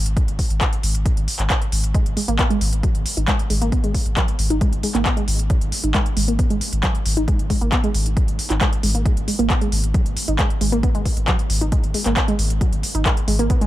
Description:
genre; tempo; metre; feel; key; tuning
driving peak-time techno; 135 BPM; 4/4; straight; G# minor; A4 = 439 Hz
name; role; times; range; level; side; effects
saturated sub bass; bass; 0.0-13.7 s; G#1; -22 LUFS; equal; sidechain pumping, low-pass filter
techno drum kit; drums; 0.1-13.7 s; handclaps, hi-hat; -24 LUFS; equal; overdrive, sidechain pumping on hats
electronic kick drum; drums; 0.2-13.6 s; none; -20 LUFS; equal; none
warbly dusty pluck; riff; 1.9-13.7 s; F#3 to D#4; -24 LUFS; right 1 dB; chorus, sidechain pumping, dub echo
room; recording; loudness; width
little or no reverb; none; -17 LUFS; side -15 dB against mid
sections
0.0-13.7 A section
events
none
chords
none

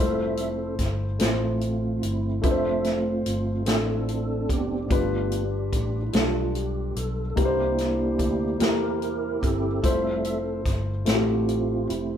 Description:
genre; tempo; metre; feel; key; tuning
slow gospel; 49 BPM (dotted quarters); 6/8; straight; F major; A4 = 440 Hz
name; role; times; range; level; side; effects
dark upright piano; accompaniment; 0.0-12.2 s; G2 to C5; -27 LUFS; left 2 dB; none
mellow tonewheel organ; sustained chords; 0.0-12.2 s; F3 to E5; -28 LUFS; right 3 dB; fast rotary speaker, chorus vibrato
fingered electric bass; bass; 0.0-12.2 s; F1 to E2; -30 LUFS; equal; none
natural country drum kit; drums; 0.4-12.1 s; hi-hat, kick drum, snare drum; -26 LUFS; equal; none
room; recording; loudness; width
moderate studio reverb, RT60 0.8 s; band playing live in one room; -22 LUFS; side -9 dB against mid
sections
0.0-12.2 A section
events
tonewheel organ solo 0.0-12.2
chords
0.0 Fmaj7; 2.4 Dm7/F; 4.9 G7; 7.4 C7; 9.8 Fmaj7

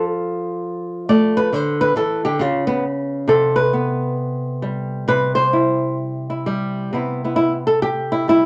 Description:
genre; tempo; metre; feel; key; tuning
solo jazz; 133 BPM; 4/4; swing 66% on 8ths, rubato; C major; A4 = 441 Hz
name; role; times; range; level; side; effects
flamenco guitar; solo; 0.0-8.5 s; C3 to D5; -19 LUFS; equal; none
room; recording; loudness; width
moderate club reverb, RT60 0.6 s; none; -20 LUFS; mono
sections
0.0-6.9 A section; 6.9-8.5 B section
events
nylon-string guitar solo 0.0-6.9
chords
0.0 F; 1.5 Dsus2; 2.4 N.C.; 3.3 Cmaj7

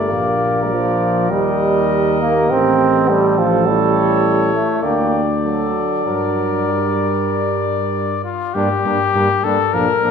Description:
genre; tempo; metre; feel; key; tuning
classical, brass quintet; 99 BPM; 4/4; uneven beats, rubato; G minor; A4 = 442 Hz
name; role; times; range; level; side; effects
warm trumpet; melody; 0.0-10.1 s; F4 to Eb5; -20 LUFS; left 7 dB; none
warm flugelhorn; second line; 0.0-10.1 s; D4 to Bb4; -23 LUFS; right 4 dB; none
clear trombone; accompaniment; 0.0-10.1 s; F3 to C4; -19 LUFS; right 3 dB; none
warm French horn; accompaniment; 0.0-10.1 s; Bb3 to G4; -25 LUFS; left 2 dB; none
mellow tuba; bass; 0.0-10.1 s; G1 to G2; -22 LUFS; right 1 dB; none
room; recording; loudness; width
wet concert hall reverb, RT60 2.0 s; minimal, uncompressed stereo recording; -14 LUFS; side -6 dB against mid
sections
0.0-8.6 A section; 8.6-10.1 A section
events
none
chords
0.1 Bb; 1.3 Eb; 2.5 Am7b5; 3.7 A7; 4.8 Gm/D; 5.4 D; 6.1 Gm

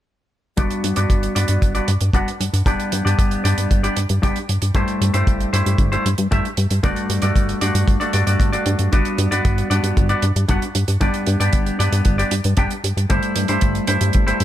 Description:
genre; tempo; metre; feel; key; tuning
italo disco; 115 BPM; 4/4; straight; G major; A4 = 443 Hz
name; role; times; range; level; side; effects
semi-hollow electric guitar; stabs; 0.6-14.4 s; G2 to G5; -21 LUFS; left 1 dB; low-pass filter, digital delay
chorused synth bass; bass; 0.6-14.4 s; G1 to G2; -20 LUFS; equal; none
hi-hat; drums; 0.6-14.4 s; none; -28 LUFS; right 7 dB; none
kick drum; drums; 0.6-14.2 s; none; -18 LUFS; equal; none
room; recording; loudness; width
little or no reverb; none; -16 LUFS; side -12 dB against mid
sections
0.6-14.4 A section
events
filter sweep on analog synth bass 0.6-14.4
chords
0.6 Bm/G; 2.7 G; 4.8 Am7/G; 6.8 D/G; 8.9 Bm/G; 11.0 G; 13.1 Am7/G

